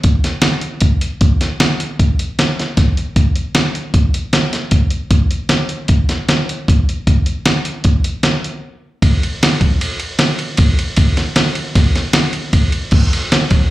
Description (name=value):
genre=rock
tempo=154 BPM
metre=5/4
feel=straight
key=none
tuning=none
part: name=dusty soul sampler-style drum kit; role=drums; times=0.0-13.6 s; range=crash cymbal, hi-hat, kick drum, ride cymbal, snare drum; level=-13 LUFS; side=equal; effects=none
room=light reverb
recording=live gig heard through the venue's PA, club reverb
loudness=-13 LUFS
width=side -16 dB against mid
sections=0.0-9.0 A section; 9.0-13.7 B section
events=break 8.6-9.0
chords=none